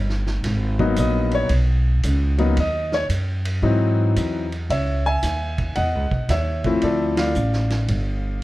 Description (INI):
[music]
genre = jazz piano trio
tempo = 113 BPM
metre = 4/4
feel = swing 67% on 8ths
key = G# minor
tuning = A4 = 443 Hz
[part]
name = upright bass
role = bass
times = 0.0-8.4 s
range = G1 to G#2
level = -21 LUFS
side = equal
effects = none
[part]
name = vintage drum kit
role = drums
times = 0.1-8.1 s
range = hi-hat, kick drum, ride cymbal, snare drum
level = -30 LUFS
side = right 2 dB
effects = none
[part]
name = warm baby grand piano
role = melody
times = 0.8-8.4 s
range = E3 to G#5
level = -22 LUFS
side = left 2 dB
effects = none
[sound]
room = light reverb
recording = dark, warm production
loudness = -18 LUFS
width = side -17 dB against mid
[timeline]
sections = 0.0-4.7 A section; 4.7-8.4 B section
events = grand piano solo 0.0-4.7; band accent 7.1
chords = 0.4 G#m7; 3.6 G#7b13; 4.7 C#madd9; 6.8 Dm7; 7.9 G7(no3)